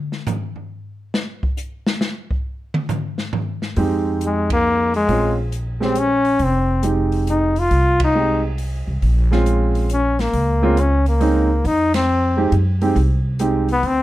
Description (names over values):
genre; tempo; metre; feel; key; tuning
jazz, small-group swing and bop; 137 BPM; 3/4; swing 66% on 8ths; F minor; A4 = 440 Hz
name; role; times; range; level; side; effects
open jazz drum kit; drums; 0.1-14.0 s; hi-hat, kick drum, ride cymbal, snare drum, toms; -25 LUFS; equal; none
warm baby grand piano; accompaniment; 3.8-13.7 s; Ab3 to G4; -20 LUFS; right 3 dB; none
upright bass; bass; 3.8-14.0 s; F1 to Gb2; -19 LUFS; equal; none
brilliant trombone; melody; 4.3-14.0 s; Ab3 to F4; -18 LUFS; left 2 dB; none
room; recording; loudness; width
light reverb; dark, warm production; -16 LUFS; side -15 dB against mid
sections
0.0-3.8 A section; 3.8-14.0 B section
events
drum solo 0.0-3.8; band accent 4.4, 7.9, 11.9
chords
0.0 N.C.; 3.8 Fm7; 5.1 Bbm7; 6.4 Fm7; 9.0 Bbm7; 11.6 Fm7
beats
0.27 0.70 | 1.14 1.58 2.02 | 2.46 2.89 3.33 | 3.77 4.21 4.64 | 5.08 5.52 5.96 | 6.40 6.83 7.27 | 7.71 8.15 8.59 | 9.02 9.46 9.90 | 10.34 10.77 11.21 | 11.65 12.08 12.52 | 12.96 13.40 13.83